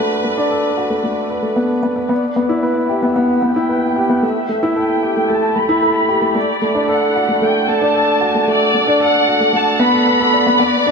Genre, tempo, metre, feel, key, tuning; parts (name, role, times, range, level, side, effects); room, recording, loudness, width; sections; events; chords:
electronica; 113 BPM; 4/4; straight; B minor; A4 = 439 Hz
rich chamber violin section; melody; 0.0-10.9 s; B4 to B5; -18 LUFS; equal; low-pass filter, shimmer reverb
dark baby grand piano; riff; 0.0-10.9 s; A3 to D5; -15 LUFS; equal; shimmer reverb, tape echo
wet huge ambient reverb, RT60 6.7 s; -13 LUFS; side -5 dB against mid
0.0-2.1 A section; 2.1-10.9 B section
build-up 2.1-10.9; filter sweep on violin section 2.1-10.9
0.0 Bm7; 2.1 G6/B; 4.2 A5; 6.4 Bm7